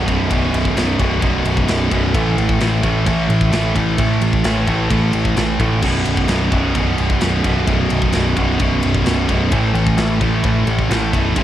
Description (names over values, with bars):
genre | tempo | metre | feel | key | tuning
heavy metal | 130 BPM | 4/4 | straight | unclear | A4 = 440 Hz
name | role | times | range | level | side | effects
distorted electric guitar | riff | 0.0-11.4 s | B1 to A3 | -20 LUFS | right 7 dB | overdrive
overdriven electric guitar | riff | 0.0-11.4 s | B1 to A3 | -24 LUFS | left 1 dB | none
scooped high-gain guitar | riff | 0.0-11.4 s | B1 to A3 | -23 LUFS | left 8 dB | distortion
growling picked electric bass | bass | 0.0-11.4 s | B0 to A1 | -19 LUFS | left 1 dB | overdrive
tight metal drum kit | drums | 0.1-11.4 s | crash cymbal, kick drum, ride cymbal, snare drum | -22 LUFS | left 1 dB | none
room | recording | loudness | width
studio reverb | home recording on cassette | -14 LUFS | side -12 dB against mid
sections
0.0-11.4 A section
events
none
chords
0.0 B5; 2.1 A5; 5.8 B5; 9.5 A5